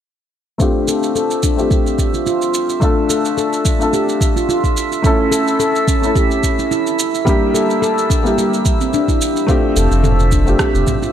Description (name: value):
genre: organic downtempo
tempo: 108 BPM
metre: 4/4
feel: swing 55% on 16ths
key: unclear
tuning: A4 = 440 Hz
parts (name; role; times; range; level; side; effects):
- felt-muted upright piano; accompaniment; 0.6-11.1 s; G3 to A4; -19 LUFS; left 1 dB; sidechain pumping, low-pass filter, digital delay
- handpan; arpeggios; 0.6-11.1 s; C4 to A4; -18 LUFS; left 1 dB; vintage 12-bit sampler grit, low-pass filter, digital delay
- deep house drum kit; drums; 0.6-11.1 s; rim click, shaker, toms; -24 LUFS; right 2 dB; none
- electronic kick drum; drums; 0.6-11.0 s; none; -17 LUFS; equal; none
- drifting glass-harmonics texture; texture; 1.0-11.1 s; E5; -26 LUFS; right 5 dB; chorus, built-in reverb
- smooth synth bass; bass; 9.8-10.8 s; F1; -14 LUFS; equal; none
room: light reverb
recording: none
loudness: -13 LUFS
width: side -9 dB against mid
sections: 0.6-11.1 A section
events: filter sweep on handpan 0.6-11.1; filter sweep on felt piano 0.6-11.1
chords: 0.6 Fadd9; 2.8 Dm; 5.0 A; 7.3 Edim; 9.5 Fadd9